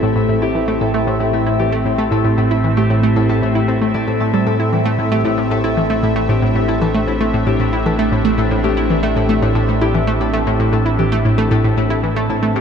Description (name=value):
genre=ambient, sequencer-driven space music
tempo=115 BPM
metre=4/4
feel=straight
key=A minor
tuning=A4 = 436 Hz
part: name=phased analog pad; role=sustained chords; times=0.0-12.6 s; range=A2 to E5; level=-18 LUFS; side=right 1 dB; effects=phaser, chorus, shimmer reverb
part: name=Celtic harp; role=arpeggios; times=0.0-12.6 s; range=E4 to A5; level=-23 LUFS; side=left 4 dB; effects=auto-pan, low-pass filter, ping-pong delay, shimmer reverb
part: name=analog pluck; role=riff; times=0.0-12.6 s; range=A2 to E4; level=-18 LUFS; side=equal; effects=chorus, ping-pong delay, shimmer reverb
part: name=round analog bass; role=bass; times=0.0-12.6 s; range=A1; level=-26 LUFS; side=equal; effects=none
part: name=bubbling stepped-filter texture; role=texture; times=0.0-12.6 s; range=C4 to E5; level=-30 LUFS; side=right 1 dB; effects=none
room=wet huge ambient reverb, RT60 7.8 s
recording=dark, warm production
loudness=-14 LUFS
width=side -7 dB against mid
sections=0.0-12.6 A section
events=fade-in on analog synth bass 0.0-12.6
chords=0.0 Am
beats=| 0.29 0.81 1.33 1.86 | 2.38 2.90 3.42 3.94 | 4.47 4.99 5.51 6.03 | 6.55 7.07 7.60 8.12 | 8.64 9.16 9.68 10.21 | 10.73 11.25 11.77 12.29